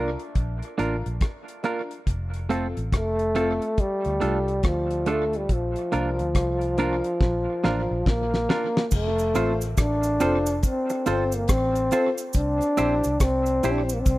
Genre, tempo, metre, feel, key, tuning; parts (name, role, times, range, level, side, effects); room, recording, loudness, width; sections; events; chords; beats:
roots reggae; 70 BPM; 4/4; swing 62% on 16ths; F major; A4 = 440 Hz
breathy trombone; melody; 0.0-14.2 s; F3 to D4; -25 LUFS; equal; dub echo
semi-hollow electric guitar; accompaniment; 0.0-13.8 s; A3 to C5; -30 LUFS; right 4 dB; dub echo
clear upright piano; stabs; 0.0-13.9 s; C4 to C5; -32 LUFS; left 4 dB
vintage muted fingered electric bass; bass; 0.0-14.2 s; F1 to D2; -28 LUFS; equal
damped 70s drum kit; drums; 0.2-14.2 s; crash cymbal, hi-hat, kick drum, rim click, snare drum; -25 LUFS; equal; tape echo
cabasa; percussion; 8.9-14.2 s; -37 LUFS; right 6 dB
small room ambience; rough home demo mix; -22 LUFS; side -18 dB against mid
0.0-8.9 A section; 8.9-14.2 B section
drum fill 7.2-8.9
0.0 Bb; 2.1 F; 3.8 Dm; 5.5 Bb; 8.9 F; 12.3 C
0.35 1.21 | 2.07 2.92 3.78 4.64 | 5.49 6.35 7.21 8.06 | 8.92 9.78 10.63 11.49 | 12.35 13.20 14.06